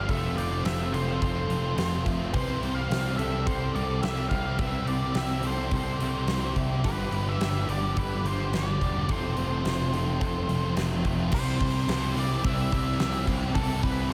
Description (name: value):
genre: rock, shoegaze and dream pop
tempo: 107 BPM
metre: 4/4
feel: straight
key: C major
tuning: A4 = 440 Hz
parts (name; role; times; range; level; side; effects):
- octave-fuzz lead guitar; melody; 0.0-14.1 s; A4 to F5; -36 LUFS; equal; distortion, delay
- electric guitar through a small old amp; arpeggios; 0.0-11.3 s; G4 to E5; -41 LUFS; equal; lush chorus, delay
- biting overdriven guitar; riff; 0.0-14.1 s; F2 to G4; -38 LUFS; equal; reverse reverb
- cranked stack guitar; riff; 0.0-14.1 s; F2 to C4; -37 LUFS; equal; overdrive, subtle chorus
- thick fuzz guitar; riff; 0.0-14.1 s; F2 to C4; -36 LUFS; equal; none
- fuzz picked electric bass; bass; 0.0-14.1 s; E1 to C2; -32 LUFS; equal; overdrive
- huge arena drum kit; drums; 0.1-14.0 s; crash cymbal, hi-hat, kick drum, snare drum; -34 LUFS; equal; none
room: moderate cathedral reverb, RT60 4.5 s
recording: dreamy mix soaked in reverb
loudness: -27 LUFS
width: mono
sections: 0.0-11.3 A section; 11.3-14.1 B section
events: none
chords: 0.1 Fmaj7; 2.3 C6; 6.8 G7; 9.1 Fmaj7; 11.3 C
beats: | 0.08 0.65 1.21 1.78 | 2.34 2.90 3.47 4.03 | 4.59 5.16 5.72 6.28 | 6.84 7.41 7.97 8.53 | 9.09 9.65 10.21 10.77 | 11.33 11.88 12.44 13.00 | 13.56 14.11